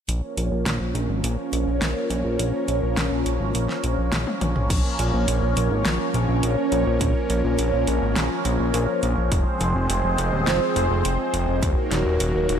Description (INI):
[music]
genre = synthwave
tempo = 104 BPM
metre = 4/4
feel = straight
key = Bb minor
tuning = A4 = 442 Hz
[part]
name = phased analog pad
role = sustained chords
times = 0.1-12.6 s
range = Eb3 to Db5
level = -24 LUFS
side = equal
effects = phaser, chorus, vintage 12-bit sampler grit, sidechain pumping
[part]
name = fat analog bass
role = bass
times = 0.1-12.6 s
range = Eb1 to Bb1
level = -23 LUFS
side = equal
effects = tube saturation
[part]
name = pop drum kit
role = drums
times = 0.1-12.6 s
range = crash cymbal, hi-hat, snare drum, toms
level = -29 LUFS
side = equal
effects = studio ambience
[part]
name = electronic kick drum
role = drums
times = 4.7-11.7 s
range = none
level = -23 LUFS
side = equal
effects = studio ambience
[sound]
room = light reverb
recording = lossy compression artefacts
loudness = -20 LUFS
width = side -8 dB against mid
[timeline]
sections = 0.1-4.7 A section; 4.7-12.6 B section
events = filter sweep on analog synth bass 0.1-4.7; filter sweep on analog synth pad 0.1-4.7; drum fill 4.1-4.7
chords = 0.1 Bbm; 9.3 Fm; 11.6 Ebm